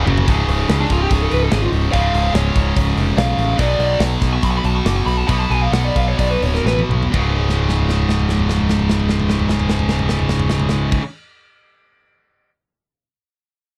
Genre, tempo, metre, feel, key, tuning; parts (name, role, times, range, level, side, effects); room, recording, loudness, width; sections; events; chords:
heavy metal; 123-145 BPM; 4/4; straight; C# phrygian dominant; A4 = 440 Hz
high-gain distorted guitar; riff; 0.0-11.0 s; C#2 to B3; -22 LUFS; equal; distortion
growling picked electric bass; bass; 0.0-11.0 s; C#1 to C#2; -21 LUFS; equal; overdrive
tight metal drum kit; drums; 0.1-12.5 s; crash cymbal, hi-hat, kick drum, snare drum, toms; -23 LUFS; equal
dark smooth lead guitar; melody; 0.8-6.8 s; D4 to D6; -24 LUFS; equal; overdrive, slapback echo
little or no reverb; dry, close 1970s-style studio recording, lossy compression artefacts; -17 LUFS; mono
0.3-7.1 A section; 7.1-11.0 B section
drum fill 0.0, 6.6-7.1, 7.4-10.9; lead electric guitar solo 0.3-7.1; slowing down 3.6-7.1
0.3 C#; 3.6 B5; 7.1 C#5